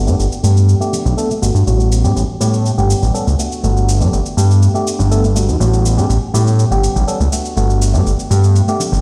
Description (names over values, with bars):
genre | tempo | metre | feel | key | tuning
filtered disco house | 122 BPM | 4/4 | straight | unclear | A4 = 439 Hz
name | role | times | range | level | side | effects
mellow tine electric piano | accompaniment | 0.0-9.0 s | G3 to A4 | -22 LUFS | equal | phaser, low-pass filter
fat analog bass | bass | 0.0-9.0 s | G1 to A2 | -14 LUFS | equal | low-pass filter
shaker | drums | 0.1-9.0 s | none | -28 LUFS | equal | none
tube shaker and congas | percussion | 0.1-9.0 s | none | -28 LUFS | equal | none
room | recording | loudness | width
light reverb, digital ambience | played on a big sound system in a bare room, stone room reverb | -14 LUFS | mono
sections
0.0-9.0 A section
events
filter sweep 0.0-9.0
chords
0.0 Gmaj7; 1.7 A13; 3.4 Gmaj7; 5.6 A13; 7.3 Gmaj7